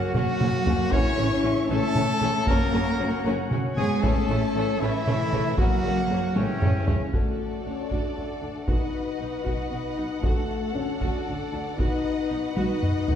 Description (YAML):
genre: cinematic, epic orchestral film score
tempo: 77 BPM (dotted quarters)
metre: 6/8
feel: straight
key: A major, D major from 7.1 s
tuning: A4 = 439 Hz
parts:
  - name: warm symphonic violin section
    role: melody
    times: 0.0-13.2 s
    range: A4 to C#6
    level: -36 LUFS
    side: left 4 dB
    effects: none
  - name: mellow French horn section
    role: sustained chords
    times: 0.0-13.2 s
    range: E3 to E4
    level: -30 LUFS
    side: left 5 dB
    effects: none
  - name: warm woodwind section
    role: sustained chords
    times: 0.0-13.2 s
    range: A3 to G5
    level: -36 LUFS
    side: equal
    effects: none
  - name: clear trumpet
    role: stabs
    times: 0.0-7.1 s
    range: C#4 to C#5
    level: -29 LUFS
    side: equal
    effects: none
  - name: warm symphonic cello section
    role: bass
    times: 0.0-13.2 s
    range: D2 to C#4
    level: -31 LUFS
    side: right 2 dB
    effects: none
  - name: warm symphonic viola section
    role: accompaniment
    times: 0.1-13.2 s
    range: C#3 to F#4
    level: -34 LUFS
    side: right 2 dB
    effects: none
  - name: warm symphonic double bass section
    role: bass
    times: 0.1-13.2 s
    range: F#1 to D2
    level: -33 LUFS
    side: right 2 dB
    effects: none
  - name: solo taiko drums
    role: drums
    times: 0.1-13.2 s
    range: none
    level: -26 LUFS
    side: equal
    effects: none
  - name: warm symphonic violin section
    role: second line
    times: 0.2-13.2 s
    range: A3 to F#5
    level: -35 LUFS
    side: left 3 dB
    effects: none
room: wet scoring stage reverb, RT60 1.6 s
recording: heard from further back in the room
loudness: -22 LUFS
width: side -9 dB against mid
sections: 0.0-7.1 A section; 7.1-13.2 B section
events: drum fill 0.2-0.9, 6.4-7.1, 12.6-13.2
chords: 0.0 F#; 0.9 A; 2.5 F#; 4.0 A; 5.6 F#; 6.4 A7; 7.1 D; 8.7 B; 10.2 D; 11.8 B